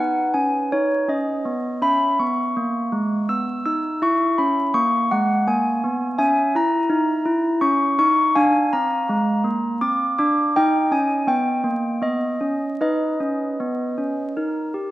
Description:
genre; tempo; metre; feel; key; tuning
classical, tune for handbells; 82 BPM; 3/4; straight; unclear; A4 = 443 Hz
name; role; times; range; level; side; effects
handbells; solo; 0.0-14.9 s; G#3 to E6; -18 LUFS; equal; none
room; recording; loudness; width
moderate scoring stage reverb, RT60 2.0 s; dark, warm production, vinyl crackle; -18 LUFS; side -15 dB against mid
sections
0.0-14.9 A section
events
none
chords
0.0 B69; 1.8 C#m; 6.2 A#dim/C#; 8.4 A#7; 10.6 D#; 12.8 Badd9; 14.4 D#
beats
0.34 1.08 | 1.81 2.55 3.28 | 4.01 4.74 5.47 | 6.20 6.92 7.64 | 8.37 9.09 9.82 | 10.55 11.29 12.04 | 12.81 13.60 14.36

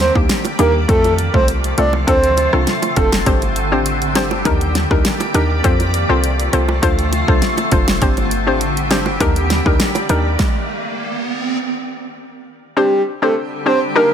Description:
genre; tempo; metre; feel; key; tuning
dancehall; 101 BPM; 4/4; straight; unclear; A4 = 442 Hz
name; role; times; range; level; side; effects
breathy flute-like synth lead; melody; 0.0-3.1, 12.8-14.1 s; G4 to D5; -17 LUFS; right 2 dB; chorus, ping-pong delay
granular cloud pad; sustained chords; 0.0-14.1 s; D3 to G4; -21 LUFS; left 1 dB; built-in reverb, sidechain pumping
warm 808-style bass; bass; 0.0-10.4 s; F1 to F2; -19 LUFS; equal; none
pop drum kit; drums; 0.0-10.5 s; hi-hat, kick drum, rim click, snare drum; -18 LUFS; equal; none
hollow square pluck; accompaniment; 0.2-14.1 s; A3 to C5; -20 LUFS; left 3 dB; chorus
bongos; percussion; 0.4-10.2 s; none; -26 LUFS; right 8 dB; none
riser; sound effects; 9.9-11.6 s; none; -25 LUFS; right 4 dB; none
room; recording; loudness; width
light reverb, digital ambience; none; -14 LUFS; side -8 dB against mid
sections
0.0-12.8 A section; 12.8-14.1 B section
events
riser 9.9-12.8; stop 10.4-12.8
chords
0.0 Ebmaj7; 0.9 F; 2.1 Dm7; 3.3 Gsus4; 4.5 Ebmaj7; 5.6 F; 6.8 Dm7; 8.0 Gsus4; 9.2 Ebmaj7; 10.4 N.C.; 12.8 Gsus4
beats
0.29 | 0.89 1.48 2.08 2.67 | 3.27 3.86 4.45 5.05 | 5.64 6.24 6.83 7.42 | 8.02 8.61 9.21 9.80 | 10.39 10.99 11.58 12.18 | 12.77 13.36 13.96

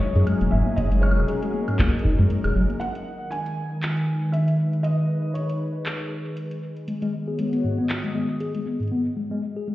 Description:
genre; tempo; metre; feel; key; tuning
IDM; 118 BPM; 4/4; swing 56% on 16ths; G# minor; A4 = 440 Hz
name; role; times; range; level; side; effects
felt-muted upright piano; melody; 0.0-6.6 s; C#5 to G#5; -33 LUFS; equal; vintage 12-bit sampler grit, tape echo
phased analog pad; sustained chords; 0.0-8.9 s; D#3 to C#5; -26 LUFS; equal; phaser, chorus
flickering grainy texture; texture; 0.0-2.8 s; D#4 to D#5; -44 LUFS; equal; none
mellow tine electric piano; arpeggios; 0.2-2.8, 6.9-9.7 s; G#2 to G#4; -26 LUFS; left 2 dB; slow stereo tremolo, tape echo
round analog bass; bass; 0.2-2.7 s; E1 to F#2; -20 LUFS; equal; tube saturation
booming analog drum machine; drums; 0.2-8.9 s; handclaps, hi-hat, woodblock; -33 LUFS; equal; none
electronic kick drum; drums; 0.8-2.2 s; none; -24 LUFS; equal; none
room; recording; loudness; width
moderate echo chamber reverb, RT60 1.6 s; heard muffled through a wall, stone room reverb, EQ; -22 LUFS; side -16 dB against mid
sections
0.0-2.8 A section; 2.8-9.7 B section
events
break 2.3-2.8; filter sweep on analog synth pad 2.8-9.7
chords
0.0 F#; 2.8 G#m; 6.9 B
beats
0.27 | 0.78 1.28 1.79 2.30 | 2.81 3.32 3.83 4.34 | 4.84 5.35 5.86 6.37 | 6.88 7.39 7.90 8.40 | 8.91 9.42

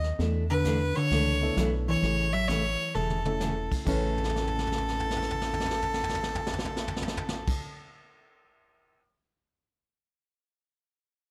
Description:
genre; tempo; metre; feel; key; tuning
country, western swing; 130 BPM; 4/4; swing 67% on 8ths; A major; A4 = 440 Hz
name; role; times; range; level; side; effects
bright fiddle; melody; 0.0-7.5 s; A4 to E5; -33 LUFS; equal; none
hollow-body jazz guitar; second line; 0.0-7.5 s; C#3 to C#4; -34 LUFS; equal; none
organ-like FM bass; bass; 0.0-7.5 s; E1 to E2; -34 LUFS; equal; none
vintage brush drum kit; drums; 0.0-9.0 s; brushed snare drum, crash cymbal, hi-hat, kick drum, snare drum, toms; -36 LUFS; equal; none
picked steel-string acoustic guitar; accompaniment; 0.2-7.5 s; A2 to A4; -38 LUFS; equal; none
dark upright piano; accompaniment; 1.4-7.5 s; A2 to B4; -40 LUFS; equal; none
room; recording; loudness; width
light reverb; none; -28 LUFS; mono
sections
0.0-3.9 A section; 3.9-7.6 B section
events
drum fill 3.0-3.4, 4.1-7.4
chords
0.2 E7sus4; 2.0 Amaj7; 3.9 A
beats
| 0.20 0.66 1.11 1.57 | 2.03 2.49 2.95 3.41 | 3.87 4.33 4.79 5.25 | 5.71 6.17 6.63 7.09

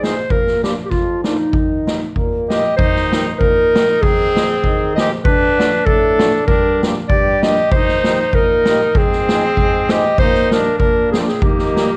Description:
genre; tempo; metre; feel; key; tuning
alpine folk, alpine dance band; 97 BPM; 2/4; swing 55% on 8ths; Eb major; A4 = 439 Hz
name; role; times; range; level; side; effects
warm clarinet; melody; 0.0-12.0 s; Eb4 to Eb5; -19 LUFS; equal; none
mellow accordion; accompaniment; 0.0-11.9 s; F2 to Eb4; -25 LUFS; equal; none
street-band drum kit; drums; 0.0-11.9 s; kick drum, snare drum; -20 LUFS; equal; none
bright trumpet; second line; 2.5-12.0 s; Bb3 to G4; -24 LUFS; equal; none
room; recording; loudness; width
moderate recital hall reverb, RT60 1.6 s; dark, warm production; -15 LUFS; mono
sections
0.0-2.8 A section; 2.8-12.0 B section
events
none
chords
0.3 Bb; 1.5 Eb; 4.0 Ab/Eb; 5.2 D; 6.5 Gm; 7.7 Eb; 9.0 Ab; 10.2 Eb/Bb; 10.8 Bb; 11.4 Eb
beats
| 0.31 0.91 | 1.53 2.15 | 2.78 3.40 | 4.02 4.63 | 5.25 5.86 | 6.48 7.10 | 7.72 8.35 | 8.97 9.58 | 10.20 10.81 | 11.43

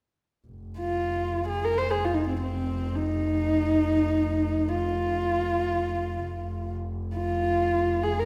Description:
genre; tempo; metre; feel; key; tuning
mongolian traditional, Mongolian folk; free time; none; none; F yu mode; A4 = 440 Hz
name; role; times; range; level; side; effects
muted double bass; drone; 0.5-8.3 s; F1; -33 LUFS; equal; none
dark horsehead fiddle; melody; 0.8-8.3 s; C4 to C5; -28 LUFS; equal; none
room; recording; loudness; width
wet recital hall reverb, RT60 1.4 s; heard from further back in the room; -27 LUFS; mono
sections
0.5-8.3 A section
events
none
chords
none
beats
free time

